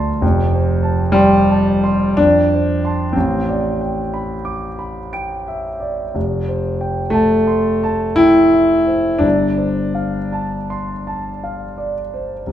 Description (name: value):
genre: classical, impressionist solo piano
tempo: 54-66 BPM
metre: 3/4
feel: rubato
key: unclear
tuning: A4 = 440 Hz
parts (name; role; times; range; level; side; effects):
- warm concert grand piano; solo; 0.0-12.5 s; F1 to D7; -15 LUFS; equal; none
room: wet recital hall reverb, RT60 1.5 s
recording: minimal, uncompressed stereo recording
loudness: -14 LUFS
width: side -11 dB against mid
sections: 0.0-12.5 A section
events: none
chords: 0.2 F; 3.1 Am11; 6.2 Fmaj9; 9.2 G9sus4